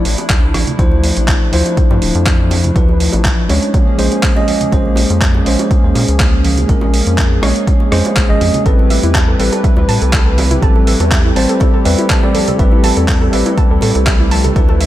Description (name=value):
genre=deep house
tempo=122 BPM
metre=4/4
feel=straight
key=A minor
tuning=A4 = 440 Hz
part: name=hollow soft pad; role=sustained chords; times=0.0-14.9 s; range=F3 to B4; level=-22 LUFS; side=left 1 dB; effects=chorus, sidechain pumping
part: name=bell-like tine electric piano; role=stabs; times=0.0-14.9 s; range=F3 to D#5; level=-17 LUFS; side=equal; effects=sidechain pumping, ping-pong delay
part: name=rubbery square bass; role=bass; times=0.1-14.9 s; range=D1 to Bb2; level=-15 LUFS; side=equal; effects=tube saturation, sidechain pumping
part: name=dusty soul sampler-style drum kit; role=drums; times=0.1-14.9 s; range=handclaps, hi-hat, rim click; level=-20 LUFS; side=right 1 dB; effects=overdrive
part: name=bongos and congas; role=percussion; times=0.2-14.8 s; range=none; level=-26 LUFS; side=right 4 dB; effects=none
part: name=electronic kick drum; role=drums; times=0.3-14.7 s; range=none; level=-13 LUFS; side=equal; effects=none
part: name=soft round pluck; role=arpeggios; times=8.7-14.9 s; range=E4 to A5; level=-21 LUFS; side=right 2 dB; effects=wide subtle chorus, sidechain pumping, ping-pong delay
room=light reverb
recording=none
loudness=-10 LUFS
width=side -14 dB against mid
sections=0.0-14.9 A section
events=none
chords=0.0 Dm9; 3.7 Bbm9; 8.7 Am9